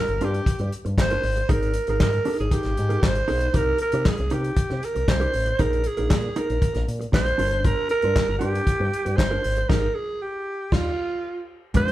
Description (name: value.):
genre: disco.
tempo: 117 BPM.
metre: 4/4.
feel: straight.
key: unclear.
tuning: A4 = 440 Hz.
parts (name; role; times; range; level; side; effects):
raspy alto saxophone; melody; 0.0-11.9 s; F4 to C5; -25 LUFS; right 2 dB; none.
mellow electric guitar; accompaniment; 0.1-11.9 s; Ab3 to D5; -30 LUFS; right 2 dB; none.
fingered electric bass with an envelope filter; bass; 0.1-11.9 s; G1 to C3; -26 LUFS; equal; none.
warm soul drum kit; drums; 0.1-11.9 s; crash cymbal, handclaps, hi-hat, kick drum, snare drum; -23 LUFS; left 1 dB; none.
room: moderate large studio reverb, RT60 1.0 s.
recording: band playing live in one room.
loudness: -20 LUFS.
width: side -14 dB against mid.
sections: 0.0-11.7 A section.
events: band accent 9.7-11.7.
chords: 0.0 Gm7; 1.2 Abmaj9; 3.5 Cm7; 5.6 Bb7sus4; 7.4 Gm7; 9.4 Abmaj9; 10.7 Ebmaj9.